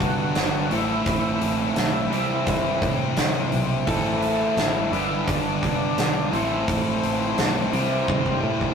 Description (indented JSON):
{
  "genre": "classic rock",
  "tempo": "85 BPM",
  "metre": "4/4",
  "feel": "straight",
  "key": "A minor",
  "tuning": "A4 = 442 Hz",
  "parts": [
    { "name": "overdriven tonewheel organ", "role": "melody", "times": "0.0-8.4 s", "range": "A3 to F#4", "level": "-29 LUFS", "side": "left 1 dB", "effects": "slow rotary speaker, chorus vibrato" },
    { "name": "crunchy overdriven guitar", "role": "riff", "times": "0.0-8.7 s", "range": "G2 to E4", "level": "-26 LUFS", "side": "right 4 dB", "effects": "none" },
    { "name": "tight distorted guitar", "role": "riff", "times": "0.0-8.7 s", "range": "G2 to A4", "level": "-26 LUFS", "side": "left 6 dB", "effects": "distortion" },
    { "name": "picked electric bass", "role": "bass", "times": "0.0-8.7 s", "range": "G1 to A2", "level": "-30 LUFS", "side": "equal", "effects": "none" },
    { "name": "big rock drum kit", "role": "drums", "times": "0.0-8.7 s", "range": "hi-hat, kick drum, snare drum", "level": "-27 LUFS", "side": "right 1 dB", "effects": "none" }
  ],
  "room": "wet stone room reverb, RT60 1.1 s",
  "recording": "rough rehearsal-room recording",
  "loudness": "-20 LUFS",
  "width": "side -6 dB against mid",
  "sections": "0.0-8.7 A section",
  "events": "drum fill 8.1-8.7",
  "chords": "0.0 G; 0.7 Am; 2.1 C; 3.9 Am; 4.9 G; 6.3 Am; 7.7 C",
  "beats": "0.36 | 1.06 1.76 2.47 3.17 | 3.87 4.58 5.28 5.98 | 6.68 7.39 8.09"
}